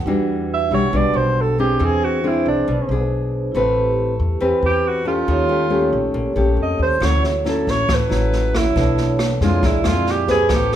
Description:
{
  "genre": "bossa nova",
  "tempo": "138 BPM",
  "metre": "4/4",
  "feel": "straight",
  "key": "E minor",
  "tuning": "A4 = 443 Hz",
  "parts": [
    { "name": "nylon-string guitar", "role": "accompaniment", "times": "0.0-10.8 s", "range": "A2 to B4", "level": "-21 LUFS", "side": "left 2 dB", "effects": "none" },
    { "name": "vibraphone with soft mallets", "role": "accompaniment", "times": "0.0-10.8 s", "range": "A#3 to D5", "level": "-25 LUFS", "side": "right 3 dB", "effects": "none" },
    { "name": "upright bass", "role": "bass", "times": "0.0-10.8 s", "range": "A1 to F2", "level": "-22 LUFS", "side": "left 1 dB", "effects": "none" },
    { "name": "breathy alto saxophone", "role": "melody", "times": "0.5-10.8 s", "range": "D4 to E5", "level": "-20 LUFS", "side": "right 3 dB", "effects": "none" },
    { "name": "open jazz drum kit", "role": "drums", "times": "7.0-10.8 s", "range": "kick drum, rim click, snare drum", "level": "-23 LUFS", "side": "equal", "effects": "none" }
  ],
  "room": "moderate large studio reverb, RT60 1.0 s",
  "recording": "band playing live in one room",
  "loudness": "-16 LUFS",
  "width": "side -10 dB against mid",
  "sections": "0.1-10.8 A section",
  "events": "alto saxophone solo 0.0-10.8",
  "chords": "0.1 Em9; 1.8 E7b13; 3.5 Am9; 5.3 D#7#11; 7.0 Dmaj9; 8.8 Bm7b5; 9.6 A#7#11",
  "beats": "| 0.07 0.50 0.94 1.37 | 1.81 2.24 2.68 3.11 | 3.55 3.98 4.42 4.85 | 5.29 5.72 6.16 6.59 | 7.02 7.46 7.89 8.32 | 8.76 9.19 9.63 10.06 | 10.50"
}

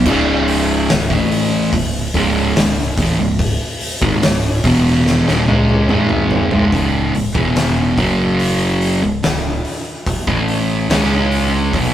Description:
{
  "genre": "stoner and doom metal",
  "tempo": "72 BPM",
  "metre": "4/4",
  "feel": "straight",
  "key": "C# minor",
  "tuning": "A4 = 440 Hz",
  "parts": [
    { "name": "fuzz guitar", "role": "riff", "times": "0.0-11.9 s", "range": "C#2 to C#4", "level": "-15 LUFS", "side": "equal", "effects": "distortion" },
    { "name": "growling fingered electric bass", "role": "bass", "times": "0.0-11.9 s", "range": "C#1 to C#2", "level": "-24 LUFS", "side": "equal", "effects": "overdrive" },
    { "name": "oversized low-tuned drum kit", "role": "drums", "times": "0.1-11.9 s", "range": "crash cymbal, hi-hat, kick drum, snare drum, toms", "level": "-19 LUFS", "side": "equal", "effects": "none" }
  ],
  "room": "moderate studio reverb, RT60 0.6 s",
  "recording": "rough rehearsal-room recording, tube saturation",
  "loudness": "-13 LUFS",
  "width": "side -11 dB against mid",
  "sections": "0.0-6.7 A section; 6.7-11.9 B section",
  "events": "drum fill 5.1-6.7",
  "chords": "0.1 C#m; 8.0 F#5; 9.0 C#m",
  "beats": "| 0.06 0.89 1.73 2.56 | 3.40 4.23 5.06 5.90 | 6.73 7.57 8.40 9.23 | 10.07 10.90 11.74"
}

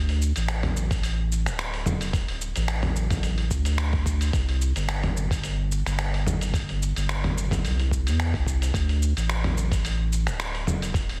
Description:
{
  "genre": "sunset chillout",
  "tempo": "109 BPM",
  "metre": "4/4",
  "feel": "swing 54% on 16ths",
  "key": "unclear",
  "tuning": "A4 = 441 Hz",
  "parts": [
    { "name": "warm sub bass", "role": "bass", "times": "0.0-11.2 s", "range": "D1 to E2", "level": "-27 LUFS", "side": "equal", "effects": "none" },
    { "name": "dusty soul sampler-style drum kit", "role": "drums", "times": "0.1-11.2 s", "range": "finger snaps, hi-hat, shaker, toms", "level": "-31 LUFS", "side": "equal", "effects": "none" },
    { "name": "electronic kick drum", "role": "drums", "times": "0.9-11.1 s", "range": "none", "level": "-30 LUFS", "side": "equal", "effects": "none" }
  ],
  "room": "light reverb",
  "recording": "heavily compressed radio sound",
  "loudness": "-26 LUFS",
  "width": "mono",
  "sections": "0.0-11.2 A section",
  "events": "none",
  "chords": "none",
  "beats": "0.48 1.03 1.58 | 2.14 2.69 3.24 3.79 | 4.34 4.89 5.44 5.99 | 6.54 7.09 7.64 8.19 | 8.74 9.29 9.84 10.39 | 10.94"
}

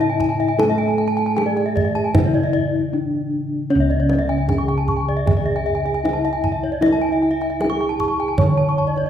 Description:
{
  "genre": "Balinese gamelan",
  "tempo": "77 BPM",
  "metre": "4/4",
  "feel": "straight",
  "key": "C# pelog",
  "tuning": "A4 = 442 Hz",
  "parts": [
    { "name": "gamelan-type bronze metallophone", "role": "melody", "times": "0.0-9.1 s", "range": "C#4 to C#5", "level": "-22 LUFS", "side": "left 1 dB", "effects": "none" },
    { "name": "gamelan-type bronze metallophone", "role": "accompaniment", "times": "0.0-3.7 s", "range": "C#3 to A3-40c", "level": "-26 LUFS", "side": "right 2 dB", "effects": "none" },
    { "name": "gamelan-type bronze metallophone", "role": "arpeggios", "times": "0.0-9.1 s", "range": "C#5 to C#6", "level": "-25 LUFS", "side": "left 5 dB", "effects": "none" },
    { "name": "gamelan-type bossed gongs", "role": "bass", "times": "0.0-9.1 s", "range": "C#2 to A4-40c", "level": "-22 LUFS", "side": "equal", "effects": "none" },
    { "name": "gamelan-type bronze metallophone", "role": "arpeggios", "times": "0.1-9.1 s", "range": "D5 to C#6", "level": "-27 LUFS", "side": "right 5 dB", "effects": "none" },
    { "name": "kendang", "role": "percussion", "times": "0.2-9.1 s", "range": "none", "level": "-24 LUFS", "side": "right 1 dB", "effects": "none" }
  ],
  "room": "wet recital hall reverb, RT60 1.7 s",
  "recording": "recorded in a church or concert hall",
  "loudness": "-17 LUFS",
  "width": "side -9 dB against mid",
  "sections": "0.0-3.7 A section; 3.7-9.1 A section",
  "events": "break 2.5-3.7",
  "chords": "none",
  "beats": "| 0.59 1.37 2.15 2.92 | 3.70 4.48 5.26 6.04 | 6.82 7.60 8.38"
}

